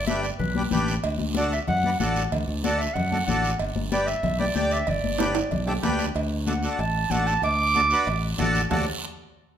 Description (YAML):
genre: latin, cumbia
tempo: 188 BPM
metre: 4/4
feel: straight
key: D major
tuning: A4 = 439 Hz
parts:
  - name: warm clarinet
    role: melody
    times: 0.0-8.4 s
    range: B4 to D6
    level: -26 LUFS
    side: right 2 dB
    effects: none
  - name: modern bright fingered electric bass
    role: bass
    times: 0.0-8.9 s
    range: G1 to F#2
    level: -28 LUFS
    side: equal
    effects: none
  - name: accordion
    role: accompaniment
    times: 0.1-8.9 s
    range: D4 to D5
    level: -29 LUFS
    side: equal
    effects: none
  - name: congas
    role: percussion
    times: 0.1-8.8 s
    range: none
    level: -30 LUFS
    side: left 6 dB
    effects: none
  - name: guiro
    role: percussion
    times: 0.1-8.8 s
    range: none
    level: -37 LUFS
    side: right 6 dB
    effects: none
  - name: cowbell and timbales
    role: percussion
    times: 1.0-8.8 s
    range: none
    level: -32 LUFS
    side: right 6 dB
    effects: none
room: moderate large studio reverb, RT60 1.2 s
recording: minimal, uncompressed stereo recording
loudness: -22 LUFS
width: side -9 dB against mid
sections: 0.0-6.2 A section; 6.2-8.7 B section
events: drum fill 5.2-6.2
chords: 0.0 G; 1.0 D; 3.6 G; 6.2 D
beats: 0.08 0.40 0.72 | 1.04 1.36 1.68 2.00 | 2.32 2.64 2.96 3.28 | 3.60 3.92 4.24 4.56 | 4.88 5.20 5.52 5.84 | 6.16 6.47 6.79 7.11 | 7.43 7.75 8.07 8.39 | 8.71